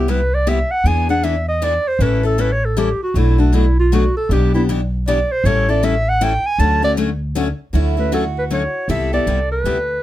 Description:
acoustic string swing (jazz manouche); 157 BPM; 3/4; swing 62% on 8ths; D major; A4 = 440 Hz
warm clarinet; melody; 0.0-10.0 s; D4 to A5; -19 LUFS; right 1 dB
picked steel-string acoustic guitar; accompaniment; 0.0-9.8 s; B2 to A4; -20 LUFS; left 5 dB
upright bass; bass; 0.0-10.0 s; A1 to E2; -18 LUFS; equal
picked steel-string acoustic guitar; second line; 7.8-10.0 s; E4 to A4; -26 LUFS; right 8 dB
light reverb; -15 LUFS; side -14 dB against mid
0.0-7.7 A section; 7.7-10.0 B section
clarinet solo 0.0-7.7
0.0 Cmaj7; 0.8 E7; 2.0 A7; 3.1 Bm7; 4.3 Em7/B; 5.4 A7; 6.6 Dmaj7; 8.9 Cmaj7

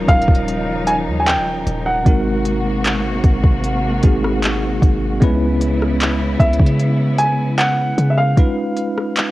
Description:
contemporary R&B; 76 BPM; 4/4; straight; C# dorian; A4 = 440 Hz
bell-like tine electric piano; accompaniment; 0.0-9.3 s; G3 to B4; -21 LUFS; equal; fast stereo tremolo, cassette tape
clear studio string section; sustained chords; 0.0-8.3 s; B#2 to F#4; -24 LUFS; equal; cassette tape
warm 808-style bass; bass; 0.0-8.4 s; D#1 to C#3; -20 LUFS; equal
warm baby grand piano; melody; 0.1-9.3 s; E5 to G#5; -20 LUFS; equal; cassette tape
smooth R&B drum kit; drums; 0.1-9.3 s; handclaps, hi-hat, kick drum, rim click; -15 LUFS; equal; overdrive
little or no reverb; home recording on cassette; -14 LUFS; side -17 dB against mid
0.0-9.3 A section
0.0 D#9; 2.1 G#9; 5.2 C#m7; 8.4 C#9

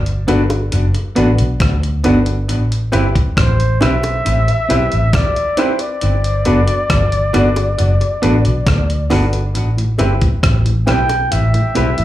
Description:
lovers rock reggae; 68 BPM; 4/4; straight; A dorian; A4 = 441 Hz
vintage muted fingered electric bass; bass; 0.0-12.0 s; F#1 to D2; -15 LUFS; equal
crisp 8-bit digital drum machine; drums; 0.1-12.0 s; hi-hat, kick drum, rim click; -19 LUFS; equal; tape echo
clear baby grand piano; accompaniment; 0.3-11.9 s; C4 to B4; -23 LUFS; left 3 dB; tape echo, plate reverb, slapback echo
semi-hollow electric guitar; stabs; 0.3-11.9 s; B3 to G4; -20 LUFS; right 2 dB; lush chorus, tape echo, plate reverb, slapback echo
bongos; percussion; 0.3-11.3 s; -27 LUFS; right 2 dB
breathy flugelhorn; melody; 3.4-12.0 s; C5 to G5; -20 LUFS; left 1 dB; tape echo, plate reverb, slapback echo
mellow tonewheel organ; accompaniment; 9.8-12.0 s; A2 to G4; -23 LUFS; equal; overdrive, chorus vibrato, slow rotary speaker, plate reverb, slapback echo
light reverb; live gig heard through the venue's PA, club reverb; -12 LUFS; side -14 dB against mid
0.0-12.0 A section
0.0 Gmaj7; 2.5 Am7; 6.0 Gmaj7; 9.5 Am7

